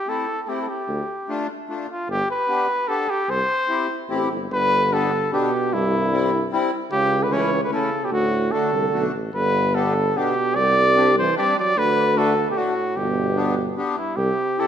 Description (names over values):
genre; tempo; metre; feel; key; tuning
alpine folk, alpine dance band; 149 BPM; 3/4; rubato; C major, G major from 4.5 s; A4 = 440 Hz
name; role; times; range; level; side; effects
warm trumpet; melody; 0.0-14.7 s; E4 to D5; -22 LUFS; equal; none
accordion; accompaniment; 0.1-14.7 s; G3 to G4; -26 LUFS; left 3 dB; none
clear tuba; bass; 0.9-14.3 s; G1 to D2; -25 LUFS; equal; none
mellow euphonium; second line; 4.5-14.7 s; G2 to G3; -26 LUFS; right 5 dB; none
room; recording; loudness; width
moderate scoring stage reverb, RT60 1.9 s; minimal, uncompressed stereo recording; -19 LUFS; side -9 dB against mid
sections
0.0-4.5 A section; 4.5-14.2 B section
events
none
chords
0.0 Am; 0.9 Dm; 2.1 G; 3.3 C; 4.5 G; 5.7 C; 6.9 A/C#; 8.1 D; 9.3 G; 10.6 Csus2; 11.8 D; 13.0 G